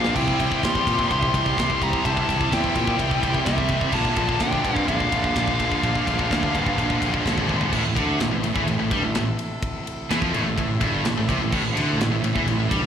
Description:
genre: heavy metal.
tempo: 127 BPM.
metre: 4/4.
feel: straight.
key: A phrygian.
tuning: A4 = 442 Hz.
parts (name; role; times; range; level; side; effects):
high-gain lead guitar; melody; 0.0-7.2 s; E5 to C6; -26 LUFS; left 2 dB; distortion, slapback echo, digital delay.
dark smooth lead guitar; second line; 0.0-7.2 s; C4 to G4; -31 LUFS; right 3 dB; overdrive, slapback echo.
chamber organ, principal chorus; sustained chords; 0.0-12.9 s; C3 to C5; -35 LUFS; left 1 dB; none.
heavy high-gain guitar; riff; 0.0-12.8 s; G2 to G3; -26 LUFS; left 13 dB; distortion, slapback echo.
scooped high-gain guitar; riff; 0.0-12.9 s; G2 to G3; -26 LUFS; right 9 dB; distortion, slapback echo.
fuzz picked electric bass; bass; 0.0-12.9 s; G1 to Bb2; -26 LUFS; equal; overdrive.
tight metal drum kit; drums; 0.0-12.8 s; crash cymbal, kick drum, ride cymbal, snare drum, toms; -27 LUFS; equal; none.
room: small room ambience.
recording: live gig heard through the venue's PA, recital hall reverb.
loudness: -20 LUFS.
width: side -8 dB against mid.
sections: 0.0-7.7 A section; 7.7-12.9 B section.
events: drum fill 0.0, 7.5.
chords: 0.2 C; 3.9 Bb; 7.7 Am.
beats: | 0.16 0.63 1.10 1.58 | 2.05 2.52 3.00 3.47 | 3.94 4.41 4.89 5.36 | 5.83 6.31 6.78 7.25 | 7.73 8.20 8.68 9.15 | 9.62 10.10 10.57 11.05 | 11.53 12.00 12.47.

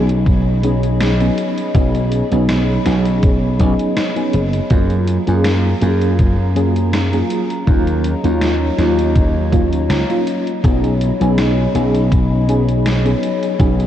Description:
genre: vaporwave.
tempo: 81 BPM.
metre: 4/4.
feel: swing 54% on 16ths.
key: B lydian.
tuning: A4 = 440 Hz.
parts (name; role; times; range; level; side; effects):
mellow FM electric piano; accompaniment; 0.0-13.9 s; F#3 to G#4; -18 LUFS; equal; tremolo, analog chorus, tape echo.
warbly tape-like pad; sustained chords; 0.0-13.9 s; F#3 to B5; -25 LUFS; left 2 dB; chorus, built-in reverb.
slap bass; bass; 0.0-13.9 s; F#1 to F#2; -17 LUFS; equal; none.
gated 80s digital drum machine; drums; 0.1-13.9 s; hi-hat, snare drum; -26 LUFS; left 1 dB; gated reverb, gated reverb snare, vintage 12-bit sampler grit.
electronic kick drum; drums; 0.3-13.8 s; none; -15 LUFS; equal; overdrive, vintage 12-bit sampler grit.
room: moderate huge ambient reverb, RT60 7.0 s.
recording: dreamy mix soaked in reverb, cassette tape.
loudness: -13 LUFS.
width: side -11 dB against mid.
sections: 0.0-13.9 A section.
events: none.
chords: 0.0 B69; 4.7 F#maj9; 7.7 D#m7; 10.6 B69.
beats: 0.27 1.00 | 1.75 2.49 3.23 3.97 | 4.71 5.45 6.19 6.93 | 7.67 8.41 9.15 9.89 | 10.63 11.38 12.12 12.86 | 13.60.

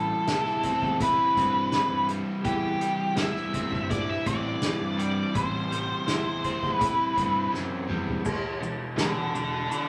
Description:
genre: psychedelic rock.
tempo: 83 BPM.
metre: 4/4.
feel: straight.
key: unclear.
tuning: A4 = 440 Hz.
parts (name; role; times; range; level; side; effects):
octave-fuzz lead guitar; melody; 0.0-9.9 s; G4 to E5; -29 LUFS; equal; distortion.
tonewheel organ; sustained chords; 0.0-9.9 s; E3 to G4; -44 LUFS; equal; none.
overdriven electric guitar; riff; 0.0-9.6 s; E2 to E4; -33 LUFS; equal; none.
fuzz picked electric bass; bass; 0.0-9.7 s; E1 to G2; -37 LUFS; equal; overdrive.
soft-mallet drum kit; drums; 0.3-9.9 s; crash cymbal, hi-hat, kick drum, ride cymbal, snare drum, toms; -34 LUFS; equal; none.
maracas; percussion; 8.3-9.9 s; none; -50 LUFS; equal; none.
room: moderate studio reverb, RT60 0.7 s.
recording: none.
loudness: -27 LUFS.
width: mono.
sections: 0.0-8.3 A section; 8.3-9.9 B section.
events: drum fill 7.5-8.3; lead electric guitar solo 8.3-9.9.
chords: 0.0 C; 8.3 Em.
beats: 0.27 1.00 1.73 | 2.45 3.18 3.90 4.63 | 5.35 6.08 6.80 7.53 | 8.26 8.98 9.71.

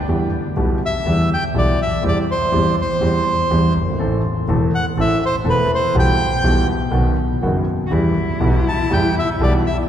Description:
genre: tango.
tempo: 122 BPM.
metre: 4/4.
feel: rubato.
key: E minor.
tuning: A4 = 440 Hz.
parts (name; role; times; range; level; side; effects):
clear grand piano; accompaniment; 0.1-9.6 s; E1 to A4; -19 LUFS; equal; none.
clear double bass; bass; 0.1-9.6 s; E1 to E2; -20 LUFS; equal; none.
bandoneon; melody; 0.9-9.8 s; B4 to A5; -21 LUFS; right 1 dB; none.
warm cello; second line; 7.9-9.9 s; E4 to F#4; -27 LUFS; left 4 dB; none.
room: wet cathedral reverb, RT60 4.4 s.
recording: recorded in a church or concert hall.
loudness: -15 LUFS.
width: side -10 dB against mid.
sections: 0.1-9.9 A section.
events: none.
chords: 0.1 Em; 2.0 C/E; 4.0 Am; 6.0 Em/B; 6.9 B; 7.9 Em.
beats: | 0.08 0.57 1.06 1.55 | 2.04 2.53 3.02 3.51 | 4.00 4.49 4.98 5.47 | 5.96 6.45 6.94 7.44 | 7.93 8.42 8.92 9.41.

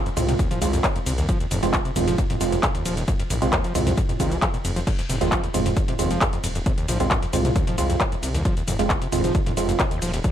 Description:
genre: driving peak-time techno.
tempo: 134 BPM.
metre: 4/4.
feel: straight.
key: F minor.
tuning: A4 = 439 Hz.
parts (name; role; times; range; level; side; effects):
wavetable chord stab; stabs; 0.0-9.8 s; Ab3 to F4; -26 LUFS; right 4 dB; sidechain pumping, digital delay.
screaming distorted acid line; riff; 0.1-10.3 s; Eb2 to F3; -28 LUFS; equal; distortion, chorus, sidechain pumping, digital delay.
techno drum kit; drums; 0.1-10.3 s; crash cymbal, handclaps, hi-hat, ride cymbal, shaker, toms; -26 LUFS; equal; sidechain pumping on hats, sidechain pumping on perc, sidechain pumping on toms, sidechain pumping on cymbals.
detuned saw bass; bass; 0.2-10.2 s; Eb1 to C2; -26 LUFS; equal; sidechain pumping.
electronic kick drum; drums; 0.4-10.3 s; none; -24 LUFS; equal; none.
room: light reverb.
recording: none.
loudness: -20 LUFS.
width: side -10 dB against mid.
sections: 0.0-10.3 A section.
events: none.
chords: 0.0 Fm.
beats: 0.39 0.84 | 1.29 1.74 2.18 2.63 | 3.08 3.53 3.97 4.42 | 4.87 5.32 5.76 6.21 | 6.66 7.11 7.56 8.00 | 8.45 8.90 9.35 9.79 | 10.24.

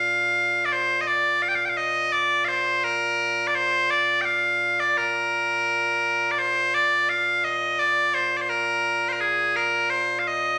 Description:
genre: scottish traditional, Scottish pipe music.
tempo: 85 BPM.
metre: 2/4.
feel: straight.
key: Bb mixolydian.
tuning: A4 = 441 Hz.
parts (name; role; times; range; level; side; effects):
loud bright bagpipes; solo; 0.0-10.6 s; Bb2 to G5; -23 LUFS; equal; none.
room: moderate large studio reverb, RT60 1.1 s.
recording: none.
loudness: -23 LUFS.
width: mono.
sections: 0.0-6.4 A section; 6.4-10.6 A section.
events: none.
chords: none.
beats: 0.02 | 0.72 1.43 | 2.14 2.84 | 3.55 4.25 | 4.96 5.67 | 6.37 7.08 | 7.78 8.49 | 9.20 9.90.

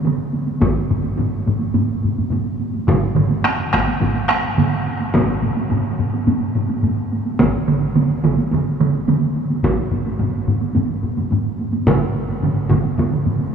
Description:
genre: japanese traditional, taiko drum ensemble.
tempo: 107 BPM.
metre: 4/4.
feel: straight.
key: none.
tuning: none.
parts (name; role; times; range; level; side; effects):
taiko ensemble; percussion; 0.1-13.5 s; none; -23 LUFS; right 2 dB; none.
taiko ensemble; percussion; 0.1-13.5 s; none; -22 LUFS; right 4 dB; none.
taiko ensemble; percussion; 0.6-13.5 s; none; -22 LUFS; left 2 dB; none.
taiko ensemble; percussion; 0.6-13.1 s; none; -24 LUFS; equal; none.
room: wet cathedral reverb, RT60 7.2 s.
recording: recorded in a church or concert hall, small room ambience.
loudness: -16 LUFS.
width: side -7 dB against mid.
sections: 0.0-13.5 A section.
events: none.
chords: none.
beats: 0.05 | 0.62 1.19 1.75 2.32 | 2.88 3.45 4.01 4.58 | 5.14 5.71 6.27 6.83 | 7.39 7.95 8.52 9.07 | 9.63 10.19 10.75 11.31 | 11.87 12.42 12.98.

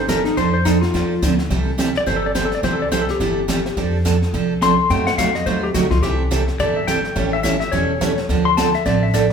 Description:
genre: country, western swing.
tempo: 212 BPM.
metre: 4/4.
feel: swing 59% on 8ths.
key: C major.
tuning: A4 = 440 Hz.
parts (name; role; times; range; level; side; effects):
clean lap steel guitar; second line; 0.0-9.3 s; Eb4 to C6; -20 LUFS; left 4 dB; none.
upright bass; bass; 0.0-9.3 s; E1 to F#2; -23 LUFS; equal; none.
picked steel-string acoustic guitar; accompaniment; 0.1-9.2 s; C3 to A4; -20 LUFS; right 4 dB; none.
jazz brush drum kit; drums; 0.1-9.3 s; brushed snare drum, hi-hat, kick drum, snare drum; -26 LUFS; left 1 dB; none.
room: wet large studio reverb, RT60 1.2 s.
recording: band playing live in one room.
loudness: -16 LUFS.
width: side -6 dB against mid.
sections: 0.0-9.3 A section.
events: electric slide guitar solo 0.0-9.3.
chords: 0.4 F6; 1.5 C6; 3.8 F6; 4.9 F#dim7; 6.0 C6; 7.2 A7; 8.3 Dm7.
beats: 0.09 | 0.37 0.66 0.94 1.22 | 1.50 1.79 2.07 2.35 | 2.63 2.92 3.20 3.48 | 3.77 4.05 4.33 4.61 | 4.90 5.18 5.46 5.75 | 6.03 6.31 6.59 6.88 | 7.16 7.44 7.72 8.01 | 8.29 8.57 8.85 9.13.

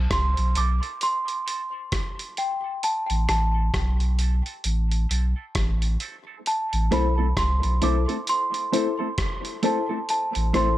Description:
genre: dub reggae.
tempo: 66 BPM.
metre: 4/4.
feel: swing 58% on 16ths.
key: A minor.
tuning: A4 = 439 Hz.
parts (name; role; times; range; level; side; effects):
celesta; melody; 0.0-10.8 s; G5 to D6; -27 LUFS; right 1 dB; tape echo.
warm sub bass; bass; 0.0-10.8 s; A1 to C2; -22 LUFS; equal; none.
dusty soul sampler-style drum kit; drums; 0.1-10.8 s; hi-hat, kick drum, rim click; -29 LUFS; equal; none.
mellow electric guitar; accompaniment; 0.6-10.7 s; A3 to A4; -31 LUFS; right 2 dB; high-pass filter, tape echo.
dark upright piano; stabs; 0.6-10.7 s; E4 to C5; -29 LUFS; left 8 dB; high-pass filter, tape echo.
room: light reverb.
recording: none.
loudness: -22 LUFS.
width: side -14 dB against mid.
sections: 0.0-10.8 A section.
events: filter sweep 0.0-6.5.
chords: 0.0 Am.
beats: 0.11 1.01 1.92 | 2.83 3.74 4.65 5.55 | 6.46 7.37 8.28 9.18 | 10.09.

